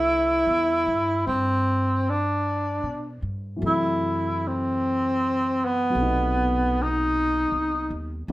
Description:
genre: jazz ballad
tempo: 51 BPM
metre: 4/4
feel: swing 69% on 8ths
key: unclear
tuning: A4 = 440 Hz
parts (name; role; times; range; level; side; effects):
- breathy tenor saxophone; melody; 0.0-8.2 s; B3 to E4; -22 LUFS; equal; none
- dark concert grand piano; accompaniment; 0.0-8.3 s; C3 to C5; -31 LUFS; left 1 dB; none
- upright bass; bass; 0.0-8.3 s; B1 to B2; -30 LUFS; equal; none
room: wet studio reverb, RT60 0.7 s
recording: rough home demo mix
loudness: -22 LUFS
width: side -17 dB against mid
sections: 0.0-8.3 A section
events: none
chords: 0.0 Cmaj9; 3.6 F#m7b5; 6.0 B7b9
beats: 0.07 1.25 2.44 | 3.62 4.79 5.95 7.12 | 8.29

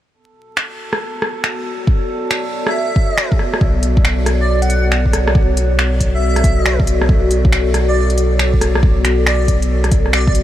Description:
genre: future garage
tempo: 138 BPM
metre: 4/4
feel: swing 65% on 16ths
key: B minor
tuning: A4 = 443 Hz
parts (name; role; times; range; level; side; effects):
- warbly tape-like pad; sustained chords; 1.1-10.4 s; B3 to D5; -21 LUFS; left 1 dB; chorus, built-in reverb, sidechain pumping
- drifting glass-harmonics texture; texture; 0.5-3.6 s; A4; -31 LUFS; right 2 dB; chorus, built-in reverb
- organic electronic drum kit; drums; 0.6-10.4 s; finger snaps, hi-hat, rim click; -21 LUFS; equal; none
- electronic kick drum; drums; 1.9-10.3 s; none; -15 LUFS; equal; none
- airy dreamy lead; melody; 2.7-10.3 s; D5 to F#5; -23 LUFS; right 2 dB; chorus, analog delay
- warm sub bass; bass; 3.6-10.4 s; B1; -16 LUFS; equal; sidechain pumping
room: moderate huge ambient reverb, RT60 6.4 s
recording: dreamy mix soaked in reverb, vinyl crackle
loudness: -13 LUFS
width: side -12 dB against mid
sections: 0.1-3.6 A section; 3.6-10.4 B section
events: none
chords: 0.1 Bm7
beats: | 0.13 0.57 1.00 1.44 | 1.87 2.31 2.74 3.18 | 3.61 4.05 4.48 4.92 | 5.35 5.79 6.22 6.66 | 7.09 7.53 7.96 8.39 | 8.83 9.27 9.70 10.13

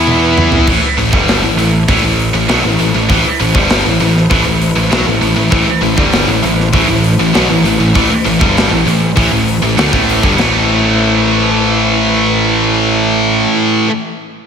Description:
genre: heavy metal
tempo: 99 BPM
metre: 4/4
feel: straight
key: A minor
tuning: A4 = 440 Hz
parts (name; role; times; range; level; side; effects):
- dark chamber string section; sustained chords; 0.0-13.4 s; A3 to E6; -23 LUFS; equal; none
- heavy high-gain guitar; riff; 0.0-13.9 s; G2 to E4; -15 LUFS; left 8 dB; distortion
- heavy high-gain guitar; riff; 0.0-13.9 s; G2 to E4; -15 LUFS; right 9 dB; distortion, slapback echo
- thick fuzz guitar; riff; 0.0-0.7, 5.5-13.9 s; G2 to E4; -17 LUFS; equal; distortion
- fuzz picked electric bass; bass; 0.0-13.5 s; G1 to E2; -17 LUFS; equal; overdrive
- tight metal drum kit; drums; 0.1-10.5 s; crash cymbal, hi-hat, kick drum, snare drum, toms; -16 LUFS; equal; none
room: moderate concert hall reverb, RT60 2.4 s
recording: big arena sound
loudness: -9 LUFS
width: side -7 dB against mid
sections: 0.7-10.4 A section; 10.4-12.8 B section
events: drum fill 0.1-0.7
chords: 0.0 E5; 0.7 Am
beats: 0.07 | 0.67 1.28 1.89 2.49 | 3.10 3.70 4.31 4.92 | 5.52 6.13 6.74 7.34 | 7.95 8.56 9.16 9.77 | 10.38 10.98 11.59 12.20

